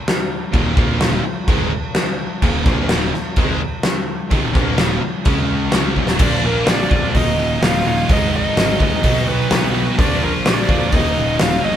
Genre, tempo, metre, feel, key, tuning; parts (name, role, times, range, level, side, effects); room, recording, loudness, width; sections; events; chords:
hard rock; 127 BPM; 4/4; straight; Eb harmonic minor from 6.2 s; A4 = 440 Hz
big rock drum kit; drums; 0.1-11.5 s; crash cymbal, hi-hat, kick drum, snare drum; -17 LUFS; equal
crunchy overdriven guitar; riff; 0.5-11.8 s; Eb2 to Db4; -25 LUFS; left 6 dB
distorted electric guitar; riff; 0.5-11.8 s; Eb2 to F#4; -25 LUFS; equal; overdrive
sludgy distorted guitar; riff; 0.5-11.8 s; Eb2 to Db4; -24 LUFS; right 7 dB; overdrive
picked electric bass; bass; 0.5-11.8 s; Eb1 to F2; -23 LUFS; equal
biting lead guitar; melody; 6.2-11.8 s; Bb4 to F5; -22 LUFS; right 1 dB; overdrive
octave-fuzz lead guitar; second line; 6.2-11.8 s; Bb3 to F4; -27 LUFS; right 2 dB
light reverb; band playing live in one room; -15 LUFS; side -10 dB against mid
0.0-6.2 A section; 6.2-11.8 B section
drum fill 6.0
0.0 Eb5; 5.3 Db5; 5.7 Eb5; 6.2 Bb; 7.1 Ebm; 8.1 Abm; 9.0 B; 10.0 Bb; 10.9 Ebm